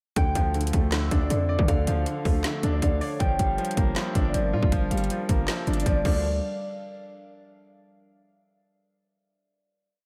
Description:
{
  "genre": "hip hop, trap",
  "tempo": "158 BPM",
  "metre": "4/4",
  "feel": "half-time",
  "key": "D harmonic minor",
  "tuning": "A4 = 440 Hz",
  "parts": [
    { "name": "concert harp", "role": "melody", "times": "0.2-6.2 s", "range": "C#5 to G5", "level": "-34 LUFS", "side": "equal", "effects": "diffuse ambient delay" },
    { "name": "clear concert grand piano", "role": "accompaniment", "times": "0.2-6.3 s", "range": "D3 to D5", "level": "-33 LUFS", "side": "equal", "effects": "none" },
    { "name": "warbly tape-like pad", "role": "sustained chords", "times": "0.9-6.2 s", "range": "F3 to F5", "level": "-38 LUFS", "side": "equal", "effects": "chorus, built-in reverb" },
    { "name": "distorted 808-style bass", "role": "bass", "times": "0.2-6.4 s", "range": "G1 to D3", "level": "-29 LUFS", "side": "equal", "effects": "distortion" },
    { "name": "trap drum kit", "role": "drums", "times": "0.2-6.1 s", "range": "crash cymbal, handclaps, hi-hat, kick drum, snare drum", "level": "-28 LUFS", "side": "equal", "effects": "none" }
  ],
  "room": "moderate plate reverb, RT60 1.6 s",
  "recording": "dreamy mix soaked in reverb",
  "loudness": "-25 LUFS",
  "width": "mono",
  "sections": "0.2-6.2 hook; 6.2-7.8 final hit",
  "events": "none",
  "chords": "0.2 Dm; 3.2 Gm7; 6.0 Dm; 6.2 N.C.",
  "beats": "| 0.16 0.54 0.92 1.30 | 1.68 2.06 2.44 2.82 | 3.20 3.58 3.96 4.34 | 4.72 5.10 5.48 5.86 | 6.24"
}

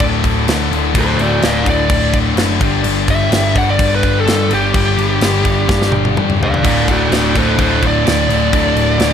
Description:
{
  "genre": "hard rock",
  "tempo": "127 BPM",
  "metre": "4/4",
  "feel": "straight",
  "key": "unclear",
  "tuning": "A4 = 441 Hz",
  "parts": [
    { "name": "overdriven tonewheel organ", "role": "sustained chords", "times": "0.0-9.1 s", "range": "G3 to E5", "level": "-29 LUFS", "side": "right 1 dB", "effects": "none" },
    { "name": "heavy high-gain guitar", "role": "riff", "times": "0.0-9.1 s", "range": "D2 to G3", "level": "-20 LUFS", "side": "equal", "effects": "distortion" },
    { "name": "sludgy distorted guitar", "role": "riff", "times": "0.0-9.1 s", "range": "D2 to G3", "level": "-20 LUFS", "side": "left 10 dB", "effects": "overdrive" },
    { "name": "overdriven picked electric bass", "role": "bass", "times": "0.0-9.1 s", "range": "D1 to G2", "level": "-18 LUFS", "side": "right 1 dB", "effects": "none" },
    { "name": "tight metal drum kit", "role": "drums", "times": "0.0-9.1 s", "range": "crash cymbal, kick drum, snare drum, toms", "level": "-18 LUFS", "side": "equal", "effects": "none" },
    { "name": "high-gain lead guitar", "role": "melody", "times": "1.0-9.1 s", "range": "F#4 to F#5", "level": "-17 LUFS", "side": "right 1 dB", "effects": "distortion, slapback echo" },
    { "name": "sludgy distorted guitar", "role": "riff", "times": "6.6-9.1 s", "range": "D2 to D3", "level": "-20 LUFS", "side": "right 9 dB", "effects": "overdrive" }
  ],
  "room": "light reverb",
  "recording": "none",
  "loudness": "-12 LUFS",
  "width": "side -8 dB against mid",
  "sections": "0.0-9.1 A section",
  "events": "lead electric guitar solo 0.0-9.1; drum fill 5.7-6.6",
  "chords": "0.0 D5; 2.6 G5; 6.6 D5",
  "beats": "0.00 0.48 | 0.95 1.43 1.90 2.38 | 2.85 3.33 3.80 4.28 | 4.75 5.22 5.70 6.17 | 6.64 7.12 7.59 8.06 | 8.54 9.01"
}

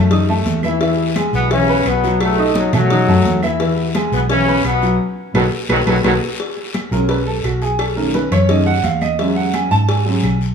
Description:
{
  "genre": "latin, salsa",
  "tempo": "172 BPM",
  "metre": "4/4",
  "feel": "straight",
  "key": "E major",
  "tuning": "A4 = 439 Hz",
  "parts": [
    { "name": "bright trombone section", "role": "melody", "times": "0.0-6.1 s", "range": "F#2 to E4", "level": "-18 LUFS", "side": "left 2 dB", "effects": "none" },
    { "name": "clear baby grand piano", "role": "accompaniment", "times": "0.0-10.4 s", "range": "D#3 to D#6", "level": "-19 LUFS", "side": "right 2 dB", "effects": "none" },
    { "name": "vintage muted fingered electric bass", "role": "bass", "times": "0.0-10.5 s", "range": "B1 to B2", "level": "-18 LUFS", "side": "equal", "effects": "none" },
    { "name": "congas", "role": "percussion", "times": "0.1-10.5 s", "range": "none", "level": "-25 LUFS", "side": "left 1 dB", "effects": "none" },
    { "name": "cowbell", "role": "percussion", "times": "0.1-10.4 s", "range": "none", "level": "-26 LUFS", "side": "left 5 dB", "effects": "none" },
    { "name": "guiro", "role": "percussion", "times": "0.1-10.5 s", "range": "none", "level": "-32 LUFS", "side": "left 6 dB", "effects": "none" },
    { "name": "claves", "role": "percussion", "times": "0.6-10.4 s", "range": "none", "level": "-29 LUFS", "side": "right 9 dB", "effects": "none" }
  ],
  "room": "light reverb",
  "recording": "studio ambience",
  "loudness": "-14 LUFS",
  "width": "side -6 dB against mid",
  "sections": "0.0-6.4 A section; 6.4-10.5 B section",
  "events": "band accent 5.0-6.4; drum fill 5.5-6.4; grand piano solo 6.4-10.5",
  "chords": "0.0 B7 (rootless); 0.8 E6; 2.2 B7; 3.6 E6; 5.0 B7; 6.4 Amaj13/B; 7.8 B7; 9.2 E6",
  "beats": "0.11 0.46 | 0.81 1.16 1.51 1.86 | 2.21 2.56 2.90 3.25 | 3.60 3.95 4.30 4.65 | 5.00 5.35 5.70 6.04 | 6.39 6.74 7.09 7.44 | 7.79 8.14 8.49 8.84 | 9.19 9.54 9.88 10.23"
}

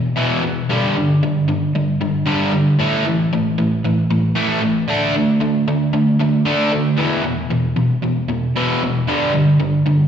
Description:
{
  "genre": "rock",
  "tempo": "114 BPM",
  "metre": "4/4",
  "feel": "straight",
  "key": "unclear",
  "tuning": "A4 = 440 Hz",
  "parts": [
    { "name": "crunchy overdriven guitar", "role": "solo", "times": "0.0-10.1 s", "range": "E2 to D4", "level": "-15 LUFS", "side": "equal", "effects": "spring reverb, slapback echo" }
  ],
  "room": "wet club reverb, RT60 0.7 s",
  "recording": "live gig heard through the venue's PA, recital hall reverb, nothing above 7.9 kHz",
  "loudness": "-15 LUFS",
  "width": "side -8 dB against mid",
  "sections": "0.0-10.1 A section",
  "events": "none",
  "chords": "0.0 E5; 0.7 G5; 2.8 A5; 4.9 D5; 7.0 E5; 9.1 G5",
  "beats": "0.18 | 0.71 1.23 1.75 2.28 | 2.80 3.32 3.85 4.37 | 4.90 5.42 5.95 6.47 | 6.99 7.52 8.04 8.57 | 9.09 9.62"
}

